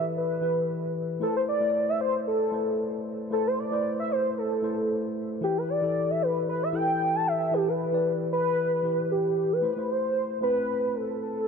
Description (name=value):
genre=afrobeats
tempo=114 BPM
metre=4/4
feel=swing 55% on 16ths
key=A minor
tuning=A4 = 440 Hz
part: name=warm velvety synth lead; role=melody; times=0.0-11.5 s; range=G4 to A5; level=-26 LUFS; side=equal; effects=chorus, tape echo
part: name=mellow tine electric piano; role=accompaniment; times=0.0-11.5 s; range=E3 to D5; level=-31 LUFS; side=left 2 dB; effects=phaser
room=moderate lush hall reverb, RT60 2.6 s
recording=dark, warm production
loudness=-24 LUFS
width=side -6 dB against mid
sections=0.0-9.6 A section; 9.6-11.5 B section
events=none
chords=0.0 Em; 1.2 Amadd9; 5.4 Em; 9.6 Amadd9